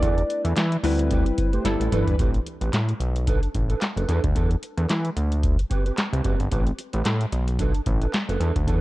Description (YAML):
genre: early-eighties boogie funk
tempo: 111 BPM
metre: 4/4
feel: swing 56% on 16ths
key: A dorian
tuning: A4 = 442 Hz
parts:
  - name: funky polysynth comp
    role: accompaniment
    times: 0.0-2.1 s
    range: G3 to B4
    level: -27 LUFS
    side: left 2 dB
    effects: chorus
  - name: mellow electric guitar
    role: riff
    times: 0.0-8.8 s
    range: C4 to B4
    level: -32 LUFS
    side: right 4 dB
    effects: ensemble chorus
  - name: fat analog bass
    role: bass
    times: 0.0-8.8 s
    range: F#1 to E3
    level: -23 LUFS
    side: equal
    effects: none
  - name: booming analog drum machine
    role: drums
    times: 0.0-8.8 s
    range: handclaps, hi-hat, kick drum, snare drum, toms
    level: -24 LUFS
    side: equal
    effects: none
  - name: mellow synth brass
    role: second line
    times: 1.5-2.2 s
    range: E3 to C5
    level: -32 LUFS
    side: equal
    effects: chorus
room: little or no reverb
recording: dark, warm production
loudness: -21 LUFS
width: side -18 dB against mid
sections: 0.0-2.2 A section; 2.2-8.8 B section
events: drum fill 1.7-2.2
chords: 0.0 E7sus4; 0.8 D13sus4; 1.7 G69; 2.2 Am9; 3.0 Bm7; 4.1 E7sus4; 5.2 D7sus4; 6.5 Am9; 7.3 Bm7